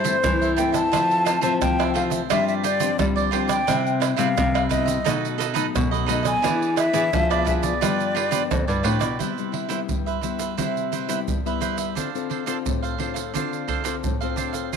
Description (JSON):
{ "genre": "samba and choro", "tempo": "87 BPM", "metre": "4/4", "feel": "straight", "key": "C major from 9.2 s", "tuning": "A4 = 440 Hz", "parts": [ { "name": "breathy concert flute", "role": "melody", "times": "0.0-8.6 s", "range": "C5 to A5", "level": "-24 LUFS", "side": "left 2 dB", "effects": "none" }, { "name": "cavaquinho", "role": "accompaniment", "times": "0.0-14.8 s", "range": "D4 to F5", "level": "-27 LUFS", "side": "right 11 dB", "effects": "none" }, { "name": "nylon-string guitar", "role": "accompaniment", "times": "0.0-14.8 s", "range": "F2 to A4", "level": "-28 LUFS", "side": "left 15 dB", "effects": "none" }, { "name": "nylon-string guitar", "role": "bass", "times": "0.0-9.2 s", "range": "F2 to G3", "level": "-25 LUFS", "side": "left 1 dB", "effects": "none" }, { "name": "tube shaker, pandeiro, surdo and tamborim", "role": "percussion", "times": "0.1-14.8 s", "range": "none", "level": "-26 LUFS", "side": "right 4 dB", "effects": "none" } ], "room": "moderate spring reverb, RT60 1.7 s, studio reverb", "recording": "1960s-style stereo with parts hard left and right", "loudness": "-20 LUFS", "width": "side -6 dB against mid", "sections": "0.0-9.2 A section; 9.2-14.8 B section", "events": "none", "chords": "0.0 C6/G; 0.9 Fmaj7; 2.3 G7sus4; 3.7 Cmaj7; 5.1 B7; 6.4 E7; 7.8 G7; 9.2 Cmaj7; 12.0 Dm7" }